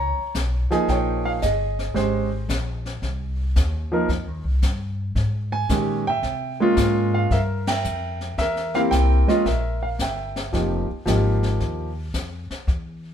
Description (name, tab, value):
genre	jazz piano trio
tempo	112 BPM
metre	4/4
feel	swing 68% on 8ths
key	F minor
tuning	A4 = 441 Hz
part	warm concert grand piano	melody	0.0-11.9 s	Eb3 to Bb5	-22 LUFS	right 1 dB	none
part	upright bass	bass	0.0-13.1 s	F1 to C3	-24 LUFS	equal	none
part	jazz brush drum kit	drums	0.3-13.1 s	brushed snare drum, hi-hat, kick drum, ride cymbal, snare drum	-30 LUFS	left 2 dB	none
room	moderate stone room reverb, RT60 1.0 s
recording	band playing live in one room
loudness	-20 LUFS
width	side -9 dB against mid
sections	0.0-13.1 A section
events	band accent 7.6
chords	0.0 Bbm7; 2.0 Fm7 (rootless); 6.2 C7; 10.5 Fm7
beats	0.35 0.89 1.42 | 1.96 2.49 3.03 3.56 | 4.10 4.63 5.17 5.70 | 6.24 6.78 7.31 7.85 | 8.38 8.92 9.45 9.99 | 10.53 11.06 11.60 12.13 | 12.67